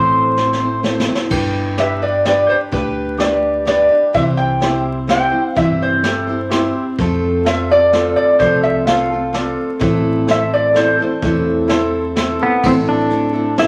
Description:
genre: honky-tonk and classic country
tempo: 127 BPM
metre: 3/4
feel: straight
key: A minor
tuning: A4 = 440 Hz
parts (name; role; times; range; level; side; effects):
- pedal steel guitar; melody; 0.0-0.8, 12.4-13.7 s; B3 to C5; -17 LUFS; equal; none
- picked steel-string acoustic guitar; accompaniment; 0.0-13.7 s; A2 to C5; -21 LUFS; equal; none
- upright bass; bass; 0.0-13.7 s; G1 to F2; -27 LUFS; equal; none
- vintage brush drum kit; drums; 0.4-13.7 s; crash cymbal, hi-hat, kick drum, snare drum; -26 LUFS; equal; none
- lap resonator guitar; second line; 1.8-12.1 s; B4 to G5; -18 LUFS; equal; none
- bright grand piano; accompaniment; 1.8-12.5 s; D4 to D5; -27 LUFS; equal; none
room: wet club reverb, RT60 0.7 s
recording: vinyl crackle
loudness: -16 LUFS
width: mono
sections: 0.0-1.3 A section; 1.3-12.6 B section; 12.6-13.7 A section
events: drum fill 0.4-1.3; resonator guitar played with a steel bar solo 1.3-12.6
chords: 0.0 Am; 1.3 G; 4.2 C; 7.0 F; 9.8 Am

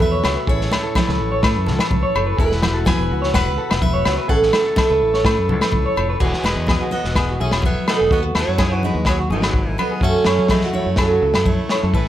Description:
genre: highlife guitar band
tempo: 126 BPM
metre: 4/4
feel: straight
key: E major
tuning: A4 = 440 Hz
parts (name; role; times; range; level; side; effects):
- picked steel-string acoustic guitar; melody; 0.0-12.1 s; B3 to G#5; -22 LUFS; right 3 dB; slapback echo, plate reverb
- nylon-string guitar; accompaniment; 0.0-12.1 s; F#2 to A4; -29 LUFS; left 6 dB; none
- combo organ; sustained chords; 0.0-6.2 s; F#5 to E6; -32 LUFS; equal; none
- electric guitar at the edge of break-up; arpeggios; 0.0-12.1 s; F#4 to C#5; -25 LUFS; right 1 dB; slapback echo
- fingered electric bass; bass; 0.0-12.1 s; E1 to F#3; -22 LUFS; equal; none
- crunchy breakbeat drum kit; drums; 0.0-12.1 s; crash cymbal, kick drum, snare drum; -21 LUFS; equal; none
- congas; percussion; 0.0-12.0 s; none; -26 LUFS; right 1 dB; none
- agogo bells; percussion; 0.2-11.8 s; none; -26 LUFS; left 3 dB; none
- raspy tenor saxophone; second line; 6.2-12.1 s; E3 to D#4; -28 LUFS; right 2 dB; none
room: light reverb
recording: none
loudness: -16 LUFS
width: side -12 dB against mid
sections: 0.0-6.2 A section; 6.2-12.1 B section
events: none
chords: 0.5 A; 2.4 Esus2; 4.3 A; 6.2 Eadd9; 8.1 B/D#; 10.0 F#m7

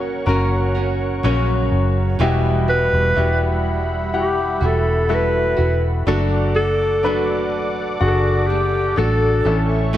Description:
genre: pop ballad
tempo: 62 BPM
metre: 4/4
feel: straight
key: unclear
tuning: A4 = 440 Hz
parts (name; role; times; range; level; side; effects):
- warm concert grand piano; accompaniment; 0.0-10.0 s; A2 to F#5; -22 LUFS; left 3 dB; none
- warm analog pad; sustained chords; 0.0-10.0 s; G3 to D6; -27 LUFS; right 2 dB; chorus
- nylon-string guitar; arpeggios; 0.0-10.0 s; F#2 to A#4; -27 LUFS; right 6 dB; none
- vintage muted fingered electric bass; bass; 0.0-10.0 s; E1 to A#1; -20 LUFS; equal; none
- breathy clarinet; melody; 2.7-9.7 s; F#4 to B4; -20 LUFS; equal; none
room: light reverb, small room ambience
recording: none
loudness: -16 LUFS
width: side -12 dB against mid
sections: 0.0-2.2 A section; 2.2-10.0 B section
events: none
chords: 0.0 F#; 2.2 Emadd9; 6.1 D/F#; 9.5 A

